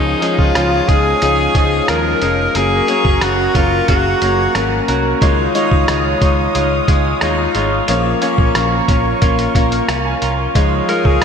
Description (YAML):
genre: 1980s-style pop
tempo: 90 BPM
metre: 4/4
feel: straight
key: Db major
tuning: A4 = 440 Hz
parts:
  - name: bright alto saxophone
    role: melody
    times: 0.0-4.8, 10.9-11.2 s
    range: Eb4 to Bb4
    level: -17 LUFS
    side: left 1 dB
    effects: ping-pong delay
  - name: clear concert grand piano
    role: accompaniment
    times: 0.0-11.2 s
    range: F3 to Db6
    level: -18 LUFS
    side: left 3 dB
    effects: none
  - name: warm analog pad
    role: sustained chords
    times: 0.0-11.2 s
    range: Bb4 to Eb6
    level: -22 LUFS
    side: right 1 dB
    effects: chorus
  - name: twelve-string electric guitar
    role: riff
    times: 0.0-11.2 s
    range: Eb3 to Gb4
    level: -23 LUFS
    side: right 5 dB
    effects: lush chorus, ping-pong delay
  - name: vintage muted fingered electric bass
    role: bass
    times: 0.0-11.2 s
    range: F1 to Eb2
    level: -20 LUFS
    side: right 1 dB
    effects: none
  - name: lo-fi sampler-style drum kit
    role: drums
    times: 0.2-11.2 s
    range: hi-hat, kick drum, rim click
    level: -18 LUFS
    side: right 1 dB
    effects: gated reverb
room: wet lush hall reverb, RT60 2.6 s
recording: bright 1980s-style digital production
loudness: -12 LUFS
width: side -7 dB against mid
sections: 0.0-11.2 A section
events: none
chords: 0.0 Dbadd9; 2.6 Gb; 5.2 Dbadd9; 7.9 Bbm; 10.6 Dbadd9